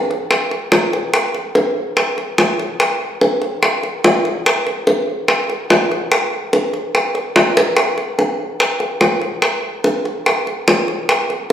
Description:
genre	latin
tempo	145 BPM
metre	4/4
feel	straight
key	none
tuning	none
part	bongos	percussion	0.1-11.5 s	none	-14 LUFS	equal	none
room	wet recital hall reverb, RT60 1.4 s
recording	recorded in a church or concert hall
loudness	-14 LUFS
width	side -9 dB against mid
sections	0.0-7.8 A section; 7.8-11.5 B section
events	drum fill 7.6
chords	none

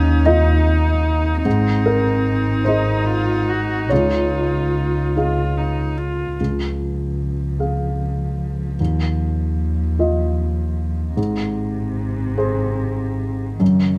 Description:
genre	neoclassical piano and strings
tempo	50 BPM (dotted quarters)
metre	6/8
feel	rubato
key	Db major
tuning	A4 = 445 Hz
part	warm cello	second line	0.0-14.0 s	C3 to Gb4	-28 LUFS	equal	none
part	dark baby grand piano	accompaniment	0.0-14.0 s	Db2 to F5	-24 LUFS	equal	none
part	rich viola	accompaniment	0.0-6.4 s	Eb4 to F4	-27 LUFS	equal	none
part	dark double bass	bass	0.0-14.0 s	Gb1 to Eb2	-23 LUFS	equal	none
room	moderate studio reverb, RT60 0.7 s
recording	band playing live in one room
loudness	-20 LUFS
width	mono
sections	0.0-6.4 A section; 6.4-14.0 B section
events	none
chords	0.0 Ebsus2; 1.5 Ab; 3.9 Dbadd9; 6.4 Db; 8.8 Ebsus2; 11.2 Ab

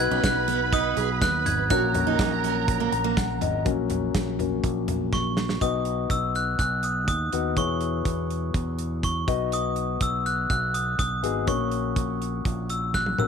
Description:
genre	piano-driven pop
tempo	123 BPM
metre	4/4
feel	straight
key	B major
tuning	A4 = 440 Hz
part	glockenspiel with brass mallets	melody	0.0-13.3 s	C#6 to G#6	-28 LUFS	right 1 dB	tape echo
part	warm studio violin section	second line	0.0-3.6 s	A#4 to B5	-31 LUFS	right 12 dB	none
part	warm concert grand piano	accompaniment	0.0-13.3 s	A#2 to A#5	-29 LUFS	left 14 dB	none
part	mellow tonewheel organ	sustained chords	0.0-5.6 s	F#3 to D#4	-36 LUFS	right 16 dB	chorus vibrato, stopped rotary speaker
part	fingered electric bass	bass	0.0-13.3 s	G#1 to E2	-30 LUFS	right 1 dB	none
part	picked steel-string acoustic guitar	riff	0.1-3.2 s	A#3 to G#4	-30 LUFS	right 15 dB	none
part	modern studio drum kit	drums	0.2-13.3 s	hi-hat, kick drum, snare drum, toms	-28 LUFS	right 1 dB	none
room	light reverb, small room ambience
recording	1960s-style stereo with parts hard left and right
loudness	-23 LUFS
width	side -6 dB against mid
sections	0.0-3.7 A section; 3.7-5.6 B section; 5.6-13.3 C section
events	grand piano fill 2.7-3.7; grand piano solo 3.7-5.6; drum fill 5.1-5.6, 12.9-13.3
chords	0.0 B; 1.7 F#/A#; 5.6 B; 7.6 E6; 9.3 B; 11.5 F#/A#

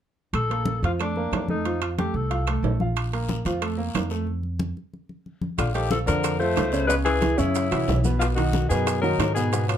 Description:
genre	Afro-Cuban jazz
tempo	183 BPM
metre	4/4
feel	straight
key	unclear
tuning	A4 = 439 Hz
part	clear alto saxophone	melody	0.3-2.5, 5.6-9.8 s	D4 to C5	-28 LUFS	left 4 dB	none
part	upright bass	bass	0.3-9.8 s	Bb1 to Ab2	-26 LUFS	equal	none
part	claves	percussion	0.3-9.8 s	none	-39 LUFS	right 5 dB	none
part	congas	percussion	0.3-9.8 s	none	-32 LUFS	left 2 dB	none
part	timbales	percussion	0.3-9.8 s	none	-31 LUFS	right 6 dB	none
part	clear grand piano	accompaniment	0.5-9.8 s	Cb3 to F5	-27 LUFS	right 2 dB	none
part	guiro	percussion	3.0-9.8 s	none	-41 LUFS	left 6 dB	none
part	warm tenor saxophone	second line	5.6-9.8 s	B2 to A3	-30 LUFS	left 4 dB	none
part	bongos	percussion	5.6-9.8 s	none	-33 LUFS	left 8 dB	none
part	maracas	percussion	5.6-9.8 s	none	-40 LUFS	right 9 dB	none
room	moderate studio ambience, RT60 0.4 s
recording	dark, warm production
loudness	-22 LUFS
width	side -9 dB against mid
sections	0.3-5.6 A section; 5.6-9.8 B section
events	stop 4.3-5.6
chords	0.3 Bbmaj7; 1.7 F; 3.0 Bb5; 4.3 N.C.; 5.6 Bbmaj7; 6.9 Dbm; 7.6 Gb5; 8.2 Bmaj7

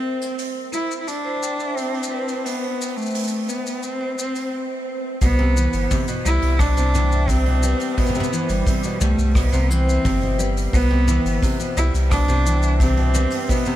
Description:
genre	folktronica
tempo	87 BPM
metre	4/4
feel	straight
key	C major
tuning	A4 = 438 Hz
part	rich cello	melody	0.0-13.8 s	G3 to E4	-24 LUFS	equal	diffuse ambient delay
part	soft brush drum kit	drums	0.2-13.8 s	hi-hat, rim click, shaker, toms	-30 LUFS	left 1 dB	none
part	vibraphone with hard mallets	second line	1.2-13.8 s	B4 to G5	-29 LUFS	right 2 dB	diffuse ambient delay
part	picked steel-string acoustic guitar	arpeggios	5.2-13.8 s	B2 to G3	-27 LUFS	equal	diffuse ambient delay
part	warm sub bass	bass	5.2-13.3 s	G1 to C2	-19 LUFS	equal	tube saturation
part	kick drum	drums	5.2-13.6 s	none	-21 LUFS	equal	none
room	light reverb, small room ambience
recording	none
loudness	-18 LUFS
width	side -13 dB against mid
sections	0.0-5.2 A section; 5.2-13.8 B section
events	none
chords	0.0 Am9 (rootless); 5.2 Cmaj7

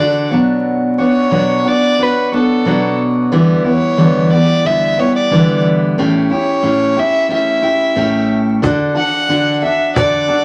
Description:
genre	acoustic pop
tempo	90 BPM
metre	4/4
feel	straight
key	D major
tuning	A4 = 441 Hz
part	warm violin	melody	0.0-10.4 s	A4 to F#5	-18 LUFS	equal	none
part	picked steel-string acoustic guitar	accompaniment	0.0-10.4 s	A2 to C#5	-16 LUFS	equal	none
part	cajon	drums	8.6-10.1 s	none	-20 LUFS	equal	none
room	wet studio reverb, RT60 0.7 s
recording	vinyl crackle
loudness	-14 LUFS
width	mono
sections	0.0-10.4 A section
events	none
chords	0.3 Bmadd9; 3.3 Em7; 6.0 A7; 8.6 D

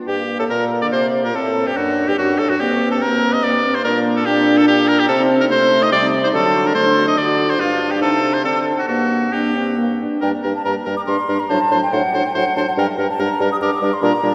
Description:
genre	quick classical-period movement for wind quintet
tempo	143 BPM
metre	3/4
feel	rubato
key	G minor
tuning	A4 = 445 Hz
part	warm clarinet	accompaniment	0.0-14.3 s	Bb3 to D5	-26 LUFS	equal	none
part	mellow hollow silver concert flute	melody	0.1-14.3 s	F5 to Eb6	-26 LUFS	equal	none
part	bright oboe	second line	0.1-14.3 s	F4 to Eb5	-22 LUFS	equal	none
part	warm French horn	accompaniment	0.1-14.3 s	F#3 to F#4	-24 LUFS	equal	none
part	warm bassoon	bass	0.1-14.3 s	F#2 to D3	-24 LUFS	equal	none
room	wet church reverb, RT60 3.8 s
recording	none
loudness	-17 LUFS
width	mono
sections	0.1-10.2 A section; 10.2-14.3 A section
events	none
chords	0.1 Gm; 1.3 D7; 2.6 Gm; 3.9 Bb6; 5.1 Adim/C; 6.3 D; 7.6 G5; 8.0 Adim/C; 8.4 D5; 8.9 Gm; 11.5 D7/A; 12.8 Gm

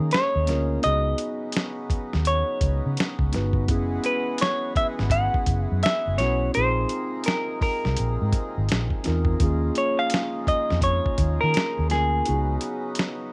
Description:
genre	R&B, neo-soul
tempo	84 BPM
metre	4/4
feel	swing 60% on 16ths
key	Eb minor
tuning	A4 = 438 Hz
part	semi-hollow electric guitar	melody	0.0-13.3 s	Ab4 to Gb5	-27 LUFS	equal	slapback echo
part	mellow tine electric piano	accompaniment	0.0-13.3 s	Bb3 to Cb5	-33 LUFS	equal	none
part	hand-pumped harmonium	sustained chords	0.0-13.3 s	C3 to Gb4	-38 LUFS	equal	none
part	vintage muted fingered electric bass	bass	0.0-12.6 s	Gb1 to Eb3	-27 LUFS	equal	none
part	dusty soul sampler-style drum kit	drums	0.1-13.2 s	hi-hat, kick drum, snare drum	-28 LUFS	equal	none
room	little or no reverb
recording	none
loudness	-24 LUFS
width	mono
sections	0.0-13.3 A section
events	none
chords	0.0 Eb9sus4; 0.8 Db9sus4; 3.7 Gb9sus4; 6.5 Bb9sus4; 9.4 Eb9sus4; 12.3 Db9sus4

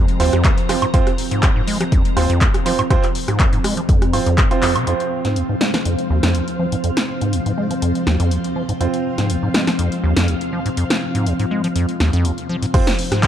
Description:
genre	acid house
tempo	122 BPM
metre	4/4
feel	swing 53% on 16ths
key	F minor pentatonic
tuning	A4 = 439 Hz
part	string machine, full ensemble	sustained chords	0.0-13.3 s	F3 to Bb5	-23 LUFS	left 1 dB	ensemble chorus, sidechain pumping
part	acid bass, square	riff	0.0-13.3 s	Eb2 to Ab3	-20 LUFS	equal	tube saturation, ping-pong delay
part	punchy analog drum machine	drums	0.1-13.3 s	crash cymbal, handclaps, hi-hat, rim click, snare drum, woodblock	-22 LUFS	equal	none
part	clear grand piano	stabs	0.2-12.9 s	C4 to C5	-24 LUFS	right 6 dB	ping-pong delay
part	electronic kick drum	drums	0.4-4.5, 12.7-13.3 s	none	-16 LUFS	equal	none
room	light reverb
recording	dark, warm production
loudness	-16 LUFS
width	side -10 dB against mid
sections	0.0-4.9 A section; 4.9-12.7 B section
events	drum fill 4.6; band accent 4.6; filter sweep on acid bass 4.9-12.7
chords	0.0 F5

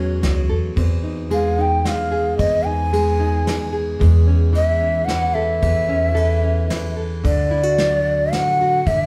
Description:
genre	acoustic folk duo or small band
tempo	111 BPM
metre	3/4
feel	straight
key	unclear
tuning	A4 = 440 Hz
part	breathy mellow shakuhachi	melody	0.0-9.1 s	C#5 to G#5	-22 LUFS	equal	none
part	nylon-string guitar	accompaniment	0.0-9.1 s	E2 to A4	-24 LUFS	equal	none
part	upright bass	bass	0.0-9.1 s	A1 to E2	-22 LUFS	equal	none
part	soft brush drum kit	drums	0.2-9.0 s	kick drum, ride cymbal, snare drum	-28 LUFS	equal	none
room	wet studio reverb, RT60 0.5 s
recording	heard from further back in the room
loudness	-18 LUFS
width	mono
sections	0.0-7.2 A section; 7.2-9.1 B section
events	none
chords	0.0 F#madd9/E; 0.8 G#/E; 4.0 Amaj7/E; 7.2 D

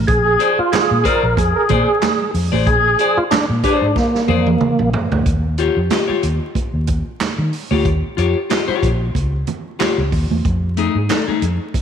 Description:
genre	funk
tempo	93 BPM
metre	4/4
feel	swing 56% on 16ths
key	unclear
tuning	A4 = 441 Hz
part	vintage muted fingered electric bass	bass	0.0-11.8 s	A1 to Eb3	-19 LUFS	equal	none
part	percussive tonewheel organ	melody	0.1-4.9 s	Bb3 to Bb4	-17 LUFS	equal	overdrive, chorus vibrato, slow rotary speaker
part	swinging big-band drum kit	drums	0.1-11.8 s	handclaps, hi-hat, kick drum, snare drum, toms	-21 LUFS	right 2 dB	none
part	clear trombone	second line	0.3-2.0 s	F4 to Bb4	-23 LUFS	right 10 dB	none
part	clean electric guitar	accompaniment	0.4-11.4 s	A3 to Eb5	-21 LUFS	left 8 dB	none
part	congas	percussion	0.7-11.8 s	none	-26 LUFS	right 7 dB	none
room	moderate echo chamber reverb, RT60 2.2 s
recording	1960s-style stereo with parts hard left and right, vinyl crackle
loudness	-14 LUFS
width	side -8 dB against mid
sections	0.0-5.3 A section; 5.3-11.8 B section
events	drum fill 4.0-5.3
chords	0.0 Bb9; 5.3 Eb9; 10.4 F7#9

